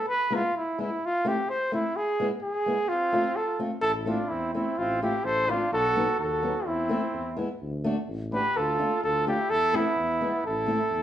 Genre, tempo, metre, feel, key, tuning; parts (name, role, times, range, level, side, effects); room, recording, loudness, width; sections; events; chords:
alpine folk, alpine dance band; 127 BPM; 2/4; straight; A minor; A4 = 440 Hz
mellow trumpet; melody; 0.0-11.0 s; E4 to C5; -26 LUFS; right 1 dB
fingerpicked steel-string acoustic guitar; accompaniment; 0.3-10.8 s; F#3 to F#4; -31 LUFS; left 1 dB
mellow trumpet; second line; 2.9-11.0 s; B3 to A4; -35 LUFS; right 3 dB
mellow tuba; bass; 3.8-11.0 s; A1 to E2; -34 LUFS; left 1 dB
moderate large studio reverb, RT60 0.9 s; band playing live in one room, nothing above 10.9 kHz; -24 LUFS; side -11 dB against mid
0.0-11.0 A section
0.0 E; 1.0 Am; 1.9 E; 2.9 F; 3.8 Am; 4.8 F/A; 5.7 B7; 6.7 Am/E; 7.1 E; 7.6 D; 8.6 Dm; 9.5 Am/E; 10.0 E; 10.4 Am